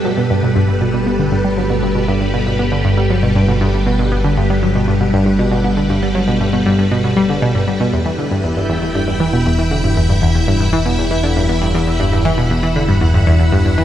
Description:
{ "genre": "ambient, sequencer-driven space music", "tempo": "118 BPM", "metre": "4/4", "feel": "straight", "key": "unclear", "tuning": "A4 = 436 Hz", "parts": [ { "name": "string machine, full ensemble", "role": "sustained chords", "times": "0.0-13.8 s", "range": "G3 to B5", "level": "-18 LUFS", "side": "equal", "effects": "ensemble chorus, shimmer reverb" }, { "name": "analog pluck", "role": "riff", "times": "0.0-13.8 s", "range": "E2 to B3", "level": "-15 LUFS", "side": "equal", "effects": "chorus, phaser, analog delay" }, { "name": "fat analog bass", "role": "bass", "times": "0.0-13.8 s", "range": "E1 to G1", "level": "-20 LUFS", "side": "equal", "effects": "none" } ], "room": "moderate huge ambient reverb, RT60 7.3 s", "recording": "none", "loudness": "-13 LUFS", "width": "side -11 dB against mid", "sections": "0.0-13.8 A section", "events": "none", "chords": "0.0 Gadd9; 7.9 Em" }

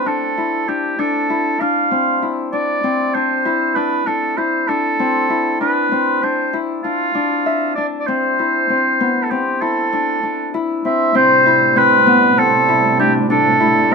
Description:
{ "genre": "contemporary instrumental, chamber music in an uneven meter", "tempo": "97 BPM", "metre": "5/4", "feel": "straight", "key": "A minor", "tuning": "A4 = 440 Hz", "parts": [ { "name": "warm oboe", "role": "melody", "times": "0.0-13.9 s", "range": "F4 to F5", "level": "-16 LUFS", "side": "right 2 dB", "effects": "none" }, { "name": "Celtic harp", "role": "arpeggios", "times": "0.0-13.9 s", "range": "B3 to E5", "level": "-18 LUFS", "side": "left 4 dB", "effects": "none" }, { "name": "muted studio string section", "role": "sustained chords", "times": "11.1-13.9 s", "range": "A2 to G3", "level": "-21 LUFS", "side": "right 6 dB", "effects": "none" } ], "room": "moderate studio reverb, RT60 0.7 s", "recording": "minimal, uncompressed stereo recording", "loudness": "-14 LUFS", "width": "side -4 dB against mid", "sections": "0.0-11.2 A section; 11.2-13.9 A section", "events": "none", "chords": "0.0 F (rootless); 8.1 Am; 11.2 Am7" }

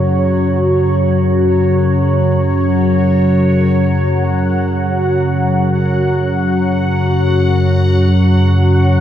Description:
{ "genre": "dark ambient drone", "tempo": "free time", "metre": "none", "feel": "none", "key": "unclear", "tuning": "A4 = 440 Hz", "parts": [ { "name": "sweeping resonant pad", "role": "sustained chords", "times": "0.0-9.0 s", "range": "C#3 to C#5", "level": "-15 LUFS", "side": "equal", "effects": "chorus" }, { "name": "organ-like drone", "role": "drone", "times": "0.0-9.0 s", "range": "F#2 to F#3", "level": "-14 LUFS", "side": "left 1 dB", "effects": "ensemble chorus, built-in reverb, phaser" }, { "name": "bubbling stepped-filter texture", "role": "texture", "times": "0.0-9.0 s", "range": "C#5 to F#5", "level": "-22 LUFS", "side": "right 2 dB", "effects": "chorus, built-in reverb" } ], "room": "moderate huge ambient reverb, RT60 9.1 s", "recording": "none", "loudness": "-11 LUFS", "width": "side -10 dB against mid", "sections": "0.0-9.0 A section", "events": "none", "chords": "0.0 F#5" }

